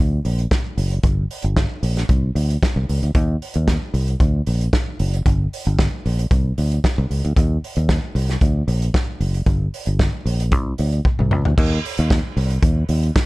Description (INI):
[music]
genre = disco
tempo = 114 BPM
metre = 4/4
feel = straight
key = unclear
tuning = A4 = 440 Hz
[part]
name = fingered electric bass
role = bass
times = 0.0-13.1 s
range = Gb1 to Eb2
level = -19 LUFS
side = equal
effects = none
[part]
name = warm soul drum kit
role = drums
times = 0.2-13.3 s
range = crash cymbal, hi-hat, kick drum, snare drum, toms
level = -20 LUFS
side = equal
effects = none
[sound]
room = little or no reverb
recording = dark, warm production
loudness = -17 LUFS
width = side -21 dB against mid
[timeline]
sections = 0.0-11.6 A section; 11.6-13.3 B section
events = drum fill 11.1-11.6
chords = none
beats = 0.51 | 1.04 1.56 2.09 2.62 | 3.15 3.67 4.20 4.73 | 5.26 5.78 6.31 6.84 | 7.36 7.89 8.42 8.95 | 9.47 10.00 10.53 11.05 | 11.58 12.11 12.63 13.16